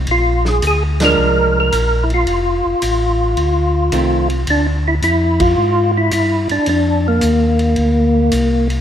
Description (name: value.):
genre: soul jazz organ trio.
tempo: 109 BPM.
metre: 4/4.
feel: swing 69% on 8ths.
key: Bb mixolydian.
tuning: A4 = 440 Hz.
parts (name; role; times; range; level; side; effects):
mellow tonewheel organ; bass; 0.0-8.8 s; F1 to Ab2; -17 LUFS; equal; overdrive, chorus vibrato, slow rotary speaker.
percussive tonewheel organ; melody; 0.1-8.7 s; Bb3 to Bb4; -15 LUFS; equal; slow rotary speaker, chorus vibrato.
warm soul drum kit; drums; 0.1-8.8 s; hi-hat, kick drum, ride cymbal, snare drum; -26 LUFS; equal; none.
archtop guitar, miked and amplified; accompaniment; 1.0-4.3 s; Eb3 to D4; -22 LUFS; right 4 dB; none.
room: light reverb.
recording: none.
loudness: -13 LUFS.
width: side -9 dB against mid.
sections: 0.0-4.5 A section; 4.5-8.8 A section.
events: band accent 0.9, 5.3.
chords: 0.1 Bb7; 2.3 F7; 4.5 Bb7.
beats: | 0.08 0.63 1.18 1.73 | 2.28 2.83 3.38 3.93 | 4.48 5.03 5.58 6.12 | 6.67 7.22 7.78 8.32.